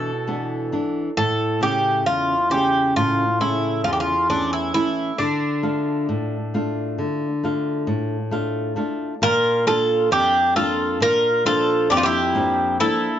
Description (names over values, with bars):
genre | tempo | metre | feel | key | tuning
greek folk, Greek bouzouki band | 134 BPM (eighths) | 9/8 | straight | unclear | A4 = 440 Hz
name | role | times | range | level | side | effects
Greek bouzouki | melody | 0.0-13.2 s | D4 to Bb4 | -20 LUFS | right 1 dB | none
flamenco guitar | accompaniment | 0.0-13.2 s | E2 to F4 | -23 LUFS | left 1 dB | none
Greek bouzouki | second line | 9.2-13.2 s | D4 to F4 | -25 LUFS | left 4 dB | none
room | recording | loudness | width
moderate small room reverb, RT60 0.5 s | nothing above 7.6 kHz | -18 LUFS | side -10 dB against mid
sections
0.0-9.2 A section; 9.2-13.2 B section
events
none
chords
0.0 E7(no3); 1.2 A; 5.2 Dm; 9.2 Bb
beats
0.29 0.74 | 1.18 1.63 2.08 2.52 2.97 3.42 3.86 4.31 4.75 | 5.20 5.65 6.10 6.54 6.99 7.44 7.88 8.33 8.78 | 9.23 9.68 10.12 10.57 11.02 11.47 11.91 12.36 12.81